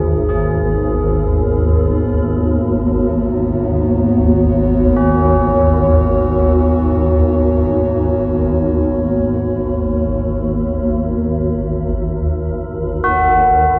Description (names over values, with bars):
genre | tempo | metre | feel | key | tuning
dark ambient drone | free time | none | none | unclear | A4 = 440 Hz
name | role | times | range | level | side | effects
dark analog pad | sustained chords | 0.0-13.8 s | G#2 to C#5 | -20 LUFS | equal | chorus
tubular bells | arpeggios | 0.0-13.8 s | C#4 to G#4 | -22 LUFS | equal | analog delay
swarming drone | drone | 0.0-13.8 s | G#1 to D#2 | -18 LUFS | equal | built-in reverb
room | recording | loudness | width
wet plate reverb, RT60 3.2 s | dreamy mix soaked in reverb | -16 LUFS | mono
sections
0.0-13.8 A section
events
fade-out on analog synth pad 0.0-13.8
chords
0.0 B/G#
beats
free time